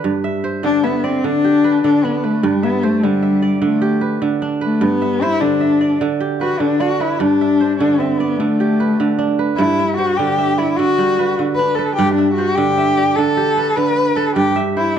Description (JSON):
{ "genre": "west african traditional, West African string and xylophone music", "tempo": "101 BPM (dotted quarters)", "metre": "12/8", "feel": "straight", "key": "G major", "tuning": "A4 = 439 Hz", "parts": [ { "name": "kora", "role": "arpeggios", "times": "0.0-15.0 s", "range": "G2 to E5", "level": "-18 LUFS", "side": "right 5 dB", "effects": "none" }, { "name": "dark cello", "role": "melody", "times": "0.6-15.0 s", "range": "G3 to B4", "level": "-16 LUFS", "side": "left 3 dB", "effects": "none" } ], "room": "moderate recital hall reverb, RT60 1.5 s", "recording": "none", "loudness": "-14 LUFS", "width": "side -8 dB against mid", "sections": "0.0-15.0 A section", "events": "cello solo 0.0-15.0", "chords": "0.0 G; 1.2 G/D; 2.4 G; 3.6 D5; 4.8 G; 6.0 Em9/D; 7.2 G; 8.4 D5; 9.6 G; 10.8 D; 12.0 G; 13.2 D5; 14.4 G" }